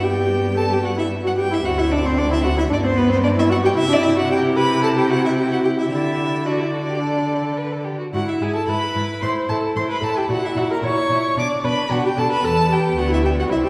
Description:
quick classical-period movement for string quartet; 112 BPM; 4/4; rubato; G major; A4 = 438 Hz
clear violin; melody; 0.0-13.7 s; B4 to D6; -26 LUFS; equal
warm violin; second line; 0.0-13.7 s; B3 to B4; -28 LUFS; equal
warm viola; accompaniment; 0.0-13.7 s; B3 to D5; -23 LUFS; equal
rich cello; bass; 0.0-13.7 s; C2 to D3; -26 LUFS; equal
wet scoring stage reverb, RT60 1.7 s; heard from further back in the room; -20 LUFS; mono
0.0-13.7 A section
0.0 G; 1.6 D9; 2.7 G; 3.8 C; 5.9 G5/D; 7.0 D5; 8.1 E/G#; 9.2 A5; 10.3 A#dim; 11.4 Bm; 12.4 E5

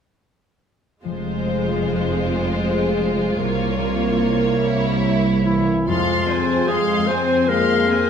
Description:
classical, slow romantic movement for symphony orchestra; 45-52 BPM (dotted quarters); 12/8; rubato; F minor; A4 = 440 Hz
rich symphonic violin section; melody; 1.0-8.1 s; C5 to C6; -28 LUFS; left 1 dB
rich symphonic viola section; accompaniment; 1.0-8.1 s; Ab3 to C4; -24 LUFS; right 2 dB
concert harp; arpeggios; 1.0-8.1 s; F2 to Db5; -25 LUFS; left 7 dB
rich symphonic cello section; bass; 1.0-5.6 s; C2 to F2; -26 LUFS; right 4 dB
warm studio violin section; second line; 1.1-8.1 s; E4 to F5; -27 LUFS; left 3 dB
rich studio double bass section; bass; 1.1-8.1 s; F1 to F2; -25 LUFS; right 4 dB
mellow French horn section; sustained chords; 5.4-8.1 s; E3 to C4; -24 LUFS; left 3 dB
clear clarinet; second line; 5.5-8.1 s; E4 to C5; -21 LUFS; left 1 dB
wet recital hall reverb, RT60 1.4 s; -17 LUFS; side -7 dB against mid
1.0-5.9 A section; 5.9-8.1 B section
1.0 Fm; 3.4 C7b9; 5.9 Fm

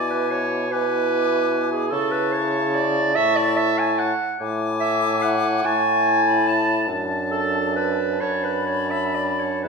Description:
classical, slow romantic movement for wind quintet; 40-50 BPM (dotted quarters); 6/8; rubato; A major; A4 = 441 Hz
bright silver concert flute; melody; 0.0-9.7 s; A5 to D6; -29 LUFS; left 8 dB
clear oboe; second line; 0.0-9.7 s; G#5 to A5; -27 LUFS; left 3 dB
warm French horn; accompaniment; 0.0-9.7 s; D4 to E4; -28 LUFS; left 2 dB
warm clarinet; accompaniment; 0.0-9.7 s; G#4 to A5; -22 LUFS; right 4 dB
mellow bassoon; bass; 0.0-9.7 s; F#2 to C#3; -26 LUFS; equal
wet recital hall reverb, RT60 1.5 s; minimal, uncompressed stereo recording; -19 LUFS; side -4 dB against mid
0.0-9.7 A section
0.0 E7/B; 1.9 A/C#; 3.2 A; 4.4 E7/A; 5.6 A; 6.9 D/F#; 8.2 Bm7/F#

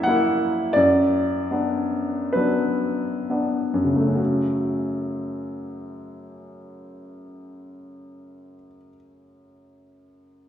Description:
classical, romantic nocturne for solo piano; 30-44 BPM; 4/4; rubato; F# minor; A4 = 440 Hz
warm baby grand piano; solo; 0.0-10.5 s; F#2 to F#5; -21 LUFS; left 1 dB
wet recital hall reverb, RT60 1.8 s; heard from further back in the room; -20 LUFS; side -10 dB against mid
0.0-4.2 A section; 4.2-10.5 B section
slowing down 0.0-4.2
0.0 F#7; 0.8 Bm/F#; 4.2 F#m

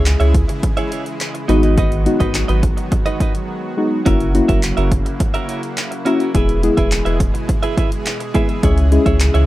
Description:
dance-pop; 105 BPM; 4/4; straight; G# minor; A4 = 441 Hz
deep mellow chord stab; accompaniment; 0.0-9.5 s; G#3 to G#4; -19 LUFS; left 2 dB; chorus, sidechain pumping
supersaw pad; sustained chords; 0.0-9.5 s; B2 to G#4; -26 LUFS; right 1 dB; sidechain pumping
direct-recorded clean electric guitar; riff; 0.0-9.5 s; C#4 to E5; -23 LUFS; right 4 dB; wide subtle chorus
warm sub bass; bass; 0.0-9.5 s; E1 to C#2; -16 LUFS; equal; sidechain pumping
punchy analog drum machine; drums; 0.1-9.5 s; handclaps, hi-hat, kick drum; -18 LUFS; equal
light reverb; rough home demo mix; -14 LUFS; side -16 dB against mid
0.0-9.5 A section
silent gap 3.5-4.1
0.0 C#m; 1.5 G#m7; 4.1 F#7; 6.3 E; 8.6 C#m

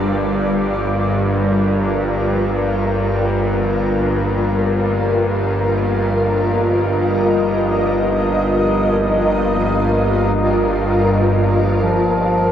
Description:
dark ambient drone; free time; A4 = 441 Hz
granular cloud pad; sustained chords; 0.0-12.5 s; G3 to Eb5; -18 LUFS; equal; built-in reverb
bowed-like drone; drone; 0.0-12.5 s; G1 to G2; -18 LUFS; equal; built-in reverb
mellow bass clarinet; melody; 11.8-12.5 s; F3; -17 LUFS; equal
wet huge ambient reverb, RT60 9.2 s; worn, warbling old tape, cassette tape, warbly pitch drift; -15 LUFS; side -9 dB against mid
0.0-11.8 A section
0.0 Gm7; 2.2 Bbsus4; 11.8 Gm7

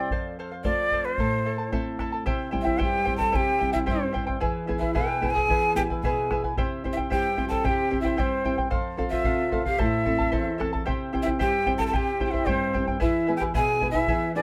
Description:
andean folk, Andean ensemble; 112 BPM; 2/4; straight; A4 = 445 Hz
mellow quena; melody; 0.0-14.4 s; C5 to A5; -29 LUFS; equal; plate reverb
charango; accompaniment; 0.0-14.4 s; E4 to A5; -33 LUFS; equal
nylon-string guitar; accompaniment; 0.0-14.4 s; E2 to A4; -33 LUFS; equal
bombo; percussion; 0.1-14.2 s; -33 LUFS; equal
reedy pan flute; second line; 2.6-14.4 s; C4 to B4; -32 LUFS; equal
light reverb; close, detailed microphones; -25 LUFS; mono
0.0-2.3 A section; 2.3-10.9 B section; 10.9-14.4 B section
0.1 F; 1.2 Am; 2.3 C; 4.4 E; 6.6 C; 8.7 F; 9.8 Am; 10.9 C; 13.0 E

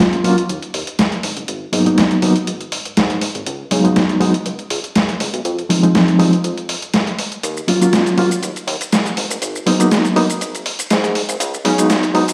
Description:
nu-disco, nu disco; 121 BPM; 4/4; swing 54% on 16ths; A4 = 441 Hz
reed electric piano; accompaniment; 0.0-12.3 s; F3 to F4; -16 LUFS; equal; fast tremolo, low-pass filter, slapback echo
fat analog bass; bass; 0.0-12.2 s; Eb1 to Db3; -26 LUFS; equal; tube saturation, high-pass filter
dusty soul sampler-style drum kit; drums; 0.0-12.3 s; hi-hat, shaker, snare drum; -21 LUFS; equal; overdrive, studio reverb
moderate digital room reverb, RT60 1.1 s, digital ambience; played on a big sound system in a bare room, large studio reverb, high-pass filter; -17 LUFS; mono
0.0-12.3 A section
build-up 0.0-12.3; filter sweep on reed electric piano 0.0-12.3
0.0 Ebm9; 1.2 Abm9; 3.5 Db7sus4; 5.5 Fm7; 7.4 Ebm9; 9.2 Abm9; 11.4 Db7sus4

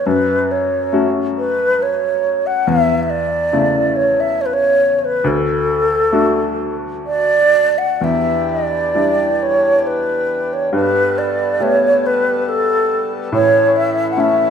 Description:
celtic folk, Celtic slow air; 69 BPM; 3/4; rubato; E dorian; A4 = 442 Hz
mellow wooden flute; melody; 0.0-14.5 s; A4 to F#5; -15 LUFS; right 1 dB
clear upright piano; accompaniment; 0.0-14.5 s; D2 to G4; -20 LUFS; left 2 dB
hand-pumped harmonium; sustained chords; 8.0-14.5 s; E3 to A4; -25 LUFS; left 2 dB
moderate scoring stage reverb, RT60 1.7 s; minimal, uncompressed stereo recording; -14 LUFS; side -7 dB against mid
0.0-8.0 A section; 8.0-14.5 A section
0.1 F#m; 2.7 A/E; 5.2 D; 8.0 Em7; 10.7 Gadd9; 13.3 A

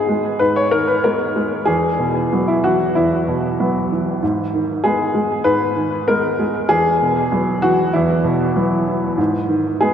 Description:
neoclassical minimalist piano; 96 BPM; 4/4; rubato; G# minor; A4 = 442 Hz
clear baby grand piano; solo; 0.0-9.9 s; E2 to C#5; -15 LUFS; equal; analog delay
wet lush hall reverb, RT60 3.2 s; dreamy mix soaked in reverb; -15 LUFS; side -8 dB against mid
0.0-9.9 A section
0.0 G#m; 1.7 Eadd9; 4.2 G#m; 6.7 Eadd9; 9.2 G#m

